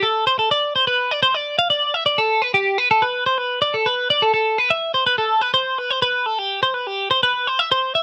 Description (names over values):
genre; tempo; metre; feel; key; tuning
rock; 125 BPM; 4/4; straight; C major; A4 = 440 Hz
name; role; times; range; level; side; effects
twelve-string electric guitar; solo; 0.0-8.0 s; G4 to F5; -19 LUFS; equal; none
room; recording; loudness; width
light reverb; none; -19 LUFS; mono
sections
0.0-4.3 A section; 4.3-8.0 B section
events
none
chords
none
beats
0.03 | 0.51 0.99 1.47 1.95 | 2.43 2.91 3.39 3.87 | 4.35 4.83 5.31 5.79 | 6.27 6.75 7.23 7.71